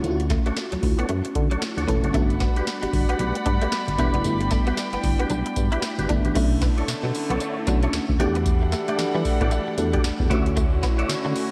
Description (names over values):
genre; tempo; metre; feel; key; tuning
R&B, new jack swing; 114 BPM; 4/4; swing 60% on 16ths; B minor; A4 = 442 Hz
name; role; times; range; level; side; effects
FM electric piano with soft pad layer; accompaniment; 0.0-11.5 s; A3 to A4; -30 LUFS; equal; chorus
solid FM bass; bass; 0.0-11.3 s; E1 to E3; -28 LUFS; equal; none
booming analog drum machine; drums; 0.0-11.5 s; crash cymbal, hi-hat, kick drum, snare drum, tambourine; -27 LUFS; equal; none
direct-recorded clean electric guitar; riff; 0.2-11.4 s; F#3 to E4; -35 LUFS; equal; ensemble chorus
percussive tonewheel organ; stabs; 0.5-11.1 s; D4 to E5; -35 LUFS; equal; chorus vibrato, fast rotary speaker, delay
dark studio string section; sustained chords; 2.1-11.5 s; D3 to B5; -32 LUFS; equal; none
room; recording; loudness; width
moderate lush hall reverb, RT60 1.8 s, digital ambience; dreamy mix soaked in reverb; -23 LUFS; mono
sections
0.0-6.4 A section; 6.4-11.5 B section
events
none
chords
0.0 Dmaj7; 2.1 Gmaj7; 6.4 Bm11; 8.2 Em11; 10.3 Dmaj9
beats
| 0.04 0.57 1.09 1.62 | 2.15 2.67 3.20 3.73 | 4.25 4.78 5.30 5.83 | 6.36 6.88 7.41 7.93 | 8.46 8.99 9.51 10.04 | 10.57 11.09